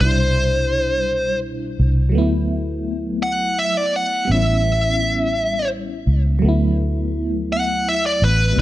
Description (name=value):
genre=slow six-eight R&B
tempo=56 BPM (dotted quarters)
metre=6/8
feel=straight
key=D major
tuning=A4 = 439 Hz
part: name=bluesy overdriven lead guitar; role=melody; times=0.0-8.6 s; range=B4 to F#5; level=-20 LUFS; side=equal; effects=distortion, plate reverb
part: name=FM electric piano with tremolo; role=accompaniment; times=0.0-8.6 s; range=B2 to E4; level=-23 LUFS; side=equal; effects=phaser
part: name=vintage muted fingered electric bass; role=bass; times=0.0-8.6 s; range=G1 to D2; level=-19 LUFS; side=equal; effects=none
room=light reverb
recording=none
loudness=-17 LUFS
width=side -15 dB against mid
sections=0.0-8.6 A section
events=none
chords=0.0 Cmaj9; 2.1 D69; 4.3 A7; 6.4 D69